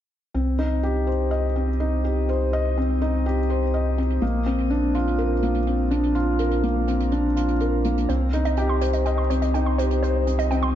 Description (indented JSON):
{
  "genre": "piano and strings electronica",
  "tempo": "124 BPM",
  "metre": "4/4",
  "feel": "straight",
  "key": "C minor",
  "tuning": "A4 = 440 Hz",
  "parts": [
    { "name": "felt-muted upright piano", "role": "riff", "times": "0.3-10.8 s", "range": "Bb3 to Eb5", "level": "-23 LUFS", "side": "left 2 dB", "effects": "tape echo, shimmer reverb" },
    { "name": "round analog bass", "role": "bass", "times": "0.3-10.8 s", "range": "Bb1 to C2", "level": "-24 LUFS", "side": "right 1 dB", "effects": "tube saturation" },
    { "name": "hi-hat", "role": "drums", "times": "0.3-10.6 s", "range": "none", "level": "-44 LUFS", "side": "right 4 dB", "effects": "low-pass filter on hats, low-pass filter on room" },
    { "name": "warbly dusty pluck", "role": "arpeggios", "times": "8.1-10.7 s", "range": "C5 to C6", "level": "-29 LUFS", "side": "right 4 dB", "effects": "chorus, tape echo, shimmer reverb" }
  ],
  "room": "moderate recital hall reverb, RT60 1.4 s, studio reverb",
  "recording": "dark, warm production, nothing above 7.6 kHz",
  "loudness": "-20 LUFS",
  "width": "side -11 dB against mid",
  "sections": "0.3-10.8 A section",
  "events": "filter sweep on drum 0.3-10.8; filter sweep on analog synth bass 0.3-10.8",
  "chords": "0.3 Cm; 4.2 Bbadd9; 8.1 Cm",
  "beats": "| 0.35 0.83 1.32 1.80 | 2.28 2.77 3.25 3.74 | 4.22 4.70 5.19 5.67 | 6.16 6.64 7.12 7.61 | 8.09 8.57 9.06 9.54 | 10.03 10.51"
}